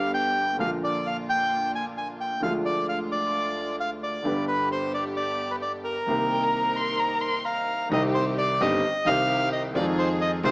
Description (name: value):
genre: tango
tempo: 131 BPM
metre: 4/4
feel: rubato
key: C minor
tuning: A4 = 440 Hz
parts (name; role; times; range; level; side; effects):
- bandoneon; melody; 0.0-10.5 s; Bb4 to Ab5; -25 LUFS; equal; none
- warm concert grand piano; accompaniment; 0.0-10.5 s; G1 to G4; -29 LUFS; equal; none
- dark studio string section; stabs; 0.0-10.5 s; Ab3 to Bb4; -34 LUFS; equal; none
- upright bass; bass; 0.0-10.5 s; G1 to F2; -38 LUFS; equal; none
- warm violin; second line; 6.3-7.9 s; G5 to C6; -28 LUFS; left 1 dB; none
room: moderate large studio reverb, RT60 1.1 s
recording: small speaker sound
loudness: -23 LUFS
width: side -26 dB against mid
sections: 0.0-7.9 A section; 7.9-10.5 B section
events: none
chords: 0.0 G; 0.6 Bb; 2.4 Ddim; 4.3 G; 6.1 Cm7; 7.9 Cm; 9.8 Fm7